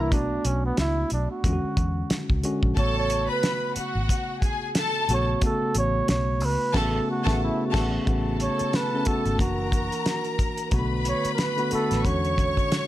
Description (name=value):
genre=lush 1970s-style soul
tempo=90 BPM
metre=4/4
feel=swing 58% on 16ths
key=A major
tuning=A4 = 440 Hz
part: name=warm flugelhorn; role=melody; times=0.0-12.9 s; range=B3 to C#5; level=-28 LUFS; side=right 3 dB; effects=none
part: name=tine electric piano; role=accompaniment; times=0.0-12.9 s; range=C#3 to F#4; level=-28 LUFS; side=left 1 dB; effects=none
part: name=vintage muted fingered electric bass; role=bass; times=0.0-12.5 s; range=F#1 to E2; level=-27 LUFS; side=equal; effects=none
part: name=cloth-damped thuddy drum kit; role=drums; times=0.1-12.9 s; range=crash cymbal, hi-hat, kick drum, snare drum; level=-26 LUFS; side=equal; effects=none
part: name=warm studio string section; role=second line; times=2.8-12.9 s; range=F#4 to C#6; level=-30 LUFS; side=left 2 dB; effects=none
room=little or no reverb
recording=none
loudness=-22 LUFS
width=side -14 dB against mid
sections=0.0-8.1 A section; 8.1-12.9 B section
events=flugelhorn solo 0.0-8.1; band accent 6.7-8.1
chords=0.1 Bm7; 1.4 E13; 2.8 A69; 9.4 F#7b13; 10.7 Bm7; 12.1 E13